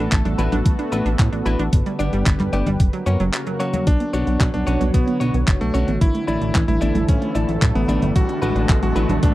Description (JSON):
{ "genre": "italo disco", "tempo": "112 BPM", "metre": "4/4", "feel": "straight", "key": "B minor", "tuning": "A4 = 440 Hz", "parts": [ { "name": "lush unison pad", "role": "sustained chords", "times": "0.0-9.3 s", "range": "C#3 to C#5", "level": "-26 LUFS", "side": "right 1 dB", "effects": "chorus" }, { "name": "analog pluck", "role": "arpeggios", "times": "0.0-9.2 s", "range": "F#3 to A4", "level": "-28 LUFS", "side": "right 3 dB", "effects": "chorus, vintage 12-bit sampler grit, tape echo" }, { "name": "clean electric guitar", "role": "stabs", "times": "0.0-9.1 s", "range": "G2 to D5", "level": "-27 LUFS", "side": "left 3 dB", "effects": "spring reverb" }, { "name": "chorused synth bass", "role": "bass", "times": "0.0-9.3 s", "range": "F#1 to A2", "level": "-21 LUFS", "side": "equal", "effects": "none" }, { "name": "clean 12-bit digital drum machine", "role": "drums", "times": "0.1-9.3 s", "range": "cabasa, congas, handclaps, hi-hat", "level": "-26 LUFS", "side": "left 1 dB", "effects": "overdrive" }, { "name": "electronic kick drum", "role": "drums", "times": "0.1-9.3 s", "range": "none", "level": "-17 LUFS", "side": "equal", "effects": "overdrive" }, { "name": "bright electric grand piano", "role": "melody", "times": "3.9-9.3 s", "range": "A3 to F#4", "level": "-25 LUFS", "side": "equal", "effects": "tape echo" }, { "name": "riser", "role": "sound effects", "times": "6.1-9.3 s", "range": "none", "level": "-31 LUFS", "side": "left 1 dB", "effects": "none" } ], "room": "little or no reverb", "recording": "dry, close 1970s-style studio recording", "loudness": "-17 LUFS", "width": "side -16 dB against mid", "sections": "0.0-3.9 A section; 3.9-9.3 B section", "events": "break 3.3-3.9; filter sweep on synth arpeggio sound 3.9-9.3; riser 6.1-9.3", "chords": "0.0 D6/A; 1.7 G; 2.8 F#; 3.9 Bmadd9; 6.0 Asus4; 8.2 D6/A" }